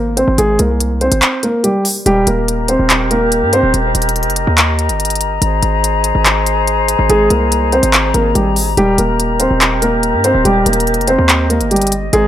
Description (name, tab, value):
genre	hip hop, trap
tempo	143 BPM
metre	4/4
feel	half-time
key	Eb major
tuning	A4 = 440 Hz
part	dark baby grand piano	melody	0.0-3.7, 7.1-12.3 s	G3 to C5	-14 LUFS	equal	analog delay
part	hard-hitting 808-style bass	bass	0.0-12.3 s	D1 to G2	-17 LUFS	equal	none
part	trap drum kit	drums	0.2-12.2 s	handclaps, hi-hat	-15 LUFS	equal	none
part	mellow small flute group	sustained chords	2.1-12.3 s	G4 to Bb5	-18 LUFS	left 2 dB	none
room	studio ambience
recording	dry, gritty hardware recording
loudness	-11 LUFS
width	side -11 dB against mid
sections	0.0-12.3 A section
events	kick muted 1.2-2.1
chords	0.0 Abadd9; 2.1 Eb; 5.4 Abadd9; 8.8 Eb